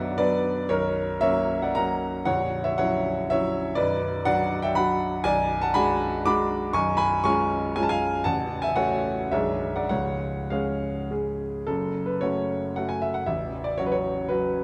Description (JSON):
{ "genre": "classical, romantic triple-time dance for piano with dotted rhythms", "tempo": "96-132 BPM", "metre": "3/4", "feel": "rubato", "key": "B minor, F# minor from 5.2 s", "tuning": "A4 = 440 Hz", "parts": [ { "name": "clear baby grand piano", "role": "solo", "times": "0.0-14.6 s", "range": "A0 to D6", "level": "-25 LUFS", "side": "equal", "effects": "none" } ], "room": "moderate recital hall reverb, RT60 1.9 s", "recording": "dark, warm production", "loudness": "-25 LUFS", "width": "mono", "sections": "0.0-11.7 A section; 11.7-14.6 B section", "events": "none", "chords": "0.0 Bm; 0.7 F#/B; 2.3 F#7/A#; 3.8 Bm; 5.2 G#m7b5/B; 6.7 C#7/B; 8.2 F#m/A; 9.3 G#dim/B; 9.9 C#; 11.7 F#m; 13.3 F#m/A" }